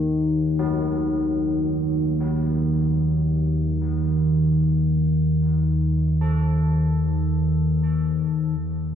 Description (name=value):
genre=dark ambient drone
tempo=free time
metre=none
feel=none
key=unclear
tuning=A4 = 441 Hz
part: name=analog drone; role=drone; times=0.0-8.9 s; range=Eb2 to Eb3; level=-19 LUFS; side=equal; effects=chorus
part: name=old church bells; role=arpeggios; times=0.6-8.9 s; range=Gb3 to A4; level=-36 LUFS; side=left 1 dB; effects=dub echo
room=wet echo chamber reverb, RT60 2.3 s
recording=echo-heavy mix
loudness=-19 LUFS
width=side -8 dB against mid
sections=0.0-8.6 A section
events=fade-out on church bells 0.0-8.6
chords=0.0 Ebm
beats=free time